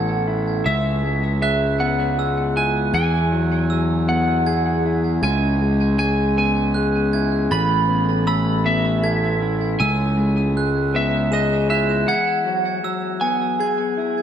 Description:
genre	post-rock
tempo	52 BPM (dotted quarters)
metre	6/8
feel	straight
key	unclear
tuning	A4 = 440 Hz
part	lightly driven lead guitar	melody	0.0-14.2 s	D#5 to B5	-23 LUFS	right 1 dB	lush chorus, tape echo
part	electric guitar through a small old amp	arpeggios	0.0-14.2 s	C#3 to A4	-24 LUFS	left 3 dB	tape echo
part	glockenspiel with brass mallets	arpeggios	0.0-14.2 s	E6 to E7	-30 LUFS	right 9 dB	tape echo
part	fuzz picked electric bass	bass	0.0-12.0 s	A1 to E2	-20 LUFS	equal	overdrive
room	moderate plate reverb, RT60 2.4 s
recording	dreamy mix soaked in reverb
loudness	-17 LUFS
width	side -9 dB against mid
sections	0.0-14.2 A section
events	break 12.1-14.2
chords	0.0 Asus2; 0.7 C#m7; 2.9 Eadd9; 5.2 C#m7; 7.5 Asus2; 9.8 C#m7; 12.1 Eadd9

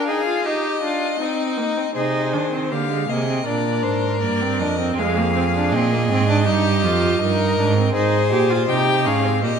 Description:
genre	classical, baroque-style fugue for string quartet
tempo	80 BPM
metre	4/4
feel	straight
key	Ab major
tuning	A4 = 440 Hz
part	rich violin	melody	0.0-9.6 s	C5 to G5	-24 LUFS	left 7 dB	none
part	rich violin	second line	0.0-9.6 s	Eb4 to Bb4	-24 LUFS	left 2 dB	none
part	clear viola	accompaniment	0.0-9.5 s	Ab3 to G4	-23 LUFS	right 2 dB	none
part	rich cello	bass	2.0-9.6 s	F2 to Eb3	-21 LUFS	right 5 dB	none
room	moderate scoring stage reverb, RT60 1.7 s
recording	none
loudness	-17 LUFS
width	side -6 dB against mid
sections	0.0-2.0 A section; 2.0-9.6 B section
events	none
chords	0.5 Eb; 2.0 Ab/C; 3.5 Gm; 5.0 Fm; 6.5 Eb; 8.0 Ab

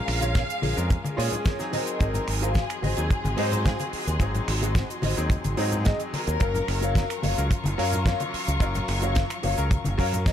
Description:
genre	nu-disco, nu disco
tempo	109 BPM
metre	4/4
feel	straight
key	unclear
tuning	A4 = 439 Hz
part	warm symphonic violin section	melody	0.0-10.3 s	F4 to F5	-33 LUFS	left 2 dB	ping-pong delay
part	bright electric grand piano	accompaniment	0.0-10.3 s	Gb3 to F5	-33 LUFS	left 2 dB	sidechain pumping, tape echo
part	warm studio string section	sustained chords	0.0-10.3 s	Gb3 to Db6	-35 LUFS	left 2 dB	sidechain pumping
part	fingered electric bass	bass	0.1-10.3 s	Gb1 to Bb2	-27 LUFS	equal	none
part	damped 70s drum kit	drums	0.1-10.3 s	cabasa, finger snaps, hi-hat, snare drum	-33 LUFS	right 2 dB	none
part	mellow electric guitar	riff	0.2-10.3 s	F4 to Gb5	-32 LUFS	left 1 dB	analog chorus, vintage 12-bit sampler grit
part	congas	percussion	0.2-10.2 s	none	-32 LUFS	left 2 dB	none
part	kick drum	drums	0.4-10.3 s	none	-24 LUFS	equal	none
room	studio ambience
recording	none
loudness	-23 LUFS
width	side -10 dB against mid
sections	0.0-10.3 A section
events	none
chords	0.0 Bbm7; 1.7 Ab7; 6.4 Gbmaj7

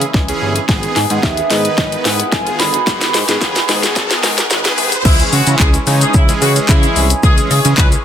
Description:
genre	dance-pop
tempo	110 BPM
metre	4/4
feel	straight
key	C# minor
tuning	A4 = 441 Hz
part	hollow clarinet-like synth lead	melody	0.0-4.5 s	D#5 to B5	-21 LUFS	right 3 dB	chorus, phaser, ping-pong delay
part	big bright polysynth	accompaniment	0.0-7.9 s	D#3 to B4	-20 LUFS	right 1 dB	sidechain pumping
part	mellow accordion	sustained chords	0.0-8.0 s	C#3 to G#4	-24 LUFS	left 1 dB	sidechain pumping
part	chorused synth bass	bass	0.0-8.0 s	G1 to C#3	-18 LUFS	equal	sidechain pumping
part	house drum kit	drums	0.0-8.0 s	crash cymbal, handclaps, hi-hat, kick drum, shaker, snare drum	-14 LUFS	left 1 dB	overdrive
part	riser	sound effects	0.1-5.1 s	none	-23 LUFS	right 2 dB	none
part	warm horn section	melody	5.1-7.9 s	E4 to B4	-19 LUFS	left 1 dB	none
room	light reverb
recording	dense, heavily limited modern master, high-pass filter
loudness	-11 LUFS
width	side -9 dB against mid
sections	0.0-5.1 A section; 5.1-8.0 B section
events	build-up 0.0-5.1; drum fill 0.0-5.1; filter sweep 0.0-5.1; riser 0.1-5.1; drop 5.1-8.0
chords	0.0 C#m; 0.7 G#m; 5.1 C#m

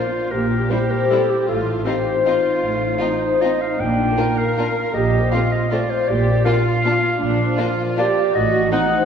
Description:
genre	classical, orchestral ballroom waltz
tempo	157 BPM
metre	3/4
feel	uneven beats, rubato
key	Bb major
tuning	A4 = 440 Hz
part	clear studio violin section	melody	0.0-8.8 s	Eb4 to F4	-31 LUFS	left 3 dB	none
part	clear clarinet	second line	0.0-9.1 s	G4 to G5	-22 LUFS	left 1 dB	none
part	clear studio violin section	second line	0.0-8.8 s	G3 to Eb4	-28 LUFS	left 1 dB	none
part	warm studio viola section	accompaniment	0.0-9.1 s	D4 to Bb4	-23 LUFS	right 2 dB	none
part	concert harp	arpeggios	0.0-9.1 s	A2 to C5	-25 LUFS	left 6 dB	none
part	rich studio cello section	bass	0.3-8.7 s	A2 to Bb2	-25 LUFS	right 2 dB	none
part	warm studio double bass section	bass	0.3-8.7 s	A1 to Bb1	-26 LUFS	right 2 dB	none
part	timpani	percussion	3.8-4.3 s	Bb2	-33 LUFS	equal	none
room	wet concert hall reverb, RT60 2.0 s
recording	heard from further back in the room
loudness	-16 LUFS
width	side -7 dB against mid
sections	0.0-9.1 A section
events	none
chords	0.3 C7/Bb; 1.5 F7/A; 3.8 Bb; 4.9 F7/Bb; 6.1 Bb; 8.4 Adim7

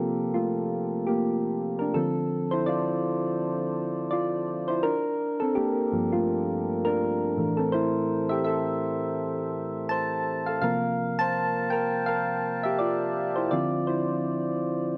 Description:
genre	R&B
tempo	83 BPM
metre	4/4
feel	swing 58% on 16ths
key	unclear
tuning	A4 = 440 Hz
part	soft electric-piano-like synth keys	solo	0.0-15.0 s	G2 to A5	-27 LUFS	equal	chorus
room	moderate plate reverb, RT60 3.3 s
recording	dark, warm production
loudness	-27 LUFS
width	mono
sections	0.0-15.0 A section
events	synth keys solo 0.0-15.0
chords	0.0 C7sus4; 2.0 Dm9; 4.8 Gm7; 7.4 Am7; 10.6 C7sus4; 13.5 Dm9

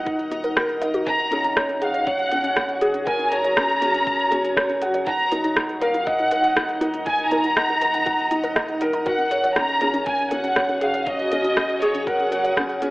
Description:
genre	piano and strings electronica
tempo	120 BPM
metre	4/4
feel	straight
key	unclear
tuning	A4 = 445 Hz
part	warm studio violin section	melody	0.0-12.8 s	Db5 to Bb5	-22 LUFS	equal	tape echo
part	granular cloud pad	sustained chords	0.0-12.9 s	Eb4 to Bb5	-30 LUFS	equal	built-in reverb, lush chorus, sidechain pumping
part	felt-muted upright piano	riff	0.0-12.9 s	Db4 to Bb5	-24 LUFS	equal	tape echo
part	warm sub bass	bass	0.0-12.9 s	Eb1 to Gb1	-50 LUFS	equal	sidechain pumping
part	warbly dusty pluck	arpeggios	0.1-12.9 s	Db4 to Bb5	-30 LUFS	equal	wide subtle chorus, sidechain pumping, tape echo
part	electronic kick drum	drums	0.1-12.7 s	none	-40 LUFS	equal	none
part	organic electronic drum kit	drums	0.1-12.9 s	hi-hat, rim click	-25 LUFS	equal	overdrive
room	wet plate reverb, RT60 1.6 s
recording	dreamy mix soaked in reverb, telephone sound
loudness	-19 LUFS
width	side -20 dB against mid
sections	0.0-12.9 A section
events	none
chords	0.0 Ebm; 1.1 Gbadd9; 5.1 Ebm; 9.1 Gbadd9

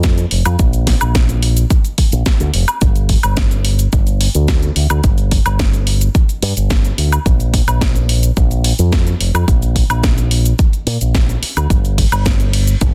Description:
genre	nu-disco, nu disco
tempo	108 BPM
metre	4/4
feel	straight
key	G minor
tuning	A4 = 440 Hz
part	fingered electric bass with an envelope filter	bass	0.0-12.9 s	F1 to Bb2	-17 LUFS	equal	none
part	electronic kick drum	drums	0.0-12.9 s	none	-16 LUFS	equal	none
part	house drum kit	drums	0.0-12.9 s	hi-hat, ride cymbal, shaker, snare drum, woodblock	-22 LUFS	equal	none
room	little or no reverb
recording	dense, heavily limited modern master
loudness	-14 LUFS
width	mono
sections	0.0-12.9 A section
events	none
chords	none

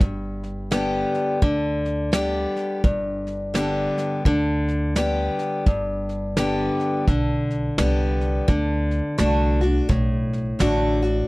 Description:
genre	honky-tonk and classic country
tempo	85 BPM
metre	4/4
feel	swing 61% on 8ths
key	G major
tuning	A4 = 439 Hz
part	picked acoustic archtop guitar	accompaniment	0.0-11.3 s	G2 to G4	-22 LUFS	left 1 dB	none
part	upright bass	bass	0.0-11.2 s	G1 to D2	-25 LUFS	equal	none
part	soft brush drum kit	drums	0.0-11.1 s	hi-hat, kick drum, snare drum	-21 LUFS	equal	none
room	small room ambience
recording	dry, close 1970s-style studio recording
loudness	-20 LUFS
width	side -22 dB against mid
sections	0.0-2.8 A section; 2.8-11.3 A section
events	none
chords	0.0 G; 8.5 D

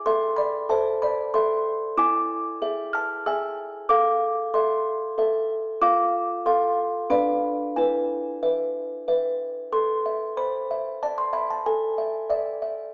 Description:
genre	classical, lullaby for music box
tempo	94 BPM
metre	3/4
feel	straight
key	A minor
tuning	A4 = 441 Hz
part	music box	solo	0.0-12.9 s	D4 to F6	-25 LUFS	equal	none
room	moderate scoring stage reverb, RT60 1.8 s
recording	worn, warbling old tape, cassette tape, warbly pitch drift, small speaker sound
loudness	-25 LUFS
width	mono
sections	0.0-9.7 A section; 9.7-12.9 B section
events	none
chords	0.1 Am; 2.0 E7; 3.9 Am; 5.8 F; 7.1 Bdim/D; 7.8 E; 9.7 Am; 11.7 E7/A

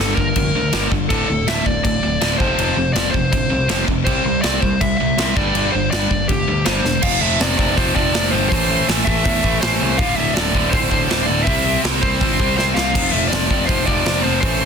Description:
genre	punk rock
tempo	162 BPM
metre	4/4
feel	straight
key	unclear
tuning	A4 = 442 Hz
part	dark smooth lead guitar	melody	0.0-14.7 s	G4 to F5	-21 LUFS	left 1 dB	overdrive
part	tight distorted guitar	riff	0.0-14.7 s	D2 to C4	-20 LUFS	equal	distortion
part	overdriven picked electric bass	bass	0.0-14.7 s	D1 to E2	-23 LUFS	equal	none
part	big rock drum kit	drums	0.0-14.5 s	crash cymbal, hi-hat, kick drum, snare drum	-20 LUFS	equal	none
room	little or no reverb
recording	dense, heavily limited modern master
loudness	-15 LUFS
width	side -6 dB against mid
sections	0.0-7.0 A section; 7.0-14.7 B section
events	drum fill 6.8, 12.6-12.9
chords	0.0 Gm; 1.1 D5; 2.4 F5; 4.1 C; 5.4 G5; 7.0 F5; 8.5 Am; 10.0 D5; 11.5 C; 12.9 F5

